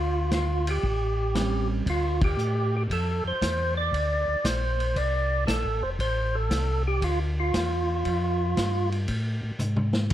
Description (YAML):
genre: soul jazz organ trio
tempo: 116 BPM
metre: 4/4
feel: swing 68% on 8ths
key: D minor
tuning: A4 = 443 Hz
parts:
  - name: percussive tonewheel organ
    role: melody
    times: 0.0-8.9 s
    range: F4 to D5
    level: -28 LUFS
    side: right 1 dB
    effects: slow rotary speaker, overdrive, plate reverb
  - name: mellow tonewheel organ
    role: bass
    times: 0.0-10.1 s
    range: F1 to A2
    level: -27 LUFS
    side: equal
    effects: slow rotary speaker
  - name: vintage drum kit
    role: drums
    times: 0.3-10.1 s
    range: crash cymbal, hi-hat, kick drum, ride cymbal, snare drum, toms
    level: -31 LUFS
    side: equal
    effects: none
  - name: hollow-body jazz guitar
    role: accompaniment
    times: 1.4-1.9 s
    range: G3 to C#4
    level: -31 LUFS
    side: right 5 dB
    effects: none
room: light reverb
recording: dark, warm production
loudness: -24 LUFS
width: side -12 dB against mid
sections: 0.0-1.9 A section; 1.9-10.1 A section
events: band accent 2.1; drum fill 9.6-10.1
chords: 0.0 Dm; 0.8 A7#9; 1.9 Dm7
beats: 0.32 0.83 1.35 | 1.87 2.38 2.90 3.41 | 3.93 4.45 4.96 5.48 | 5.99 6.51 7.03 7.54 | 8.06 8.57 9.09 9.61 | 10.12